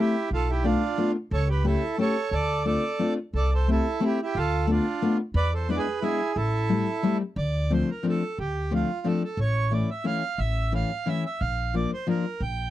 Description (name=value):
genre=musette waltz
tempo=179 BPM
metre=3/4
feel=straight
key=A minor, D minor from 7.4 s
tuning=A4 = 441 Hz
part: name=accordion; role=melody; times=0.0-12.7 s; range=D4 to G5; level=-28 LUFS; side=right 4 dB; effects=none
part: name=fingerpicked steel-string acoustic guitar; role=accompaniment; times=0.0-12.2 s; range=E3 to G4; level=-25 LUFS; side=left 3 dB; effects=none
part: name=upright bass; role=bass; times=0.3-12.7 s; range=A1 to E2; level=-26 LUFS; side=equal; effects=none
room=light reverb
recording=dry, close 1970s-style studio recording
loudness=-23 LUFS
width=side -14 dB against mid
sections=0.0-7.4 A section; 7.4-12.7 B section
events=none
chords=0.3 Bm7b5; 1.3 A7/C#; 2.3 Dm7; 3.3 Am7/C; 4.3 Bm7b5/D; 5.3 E7; 6.3 Am7; 7.4 Dm7; 9.4 A; 11.4 Bb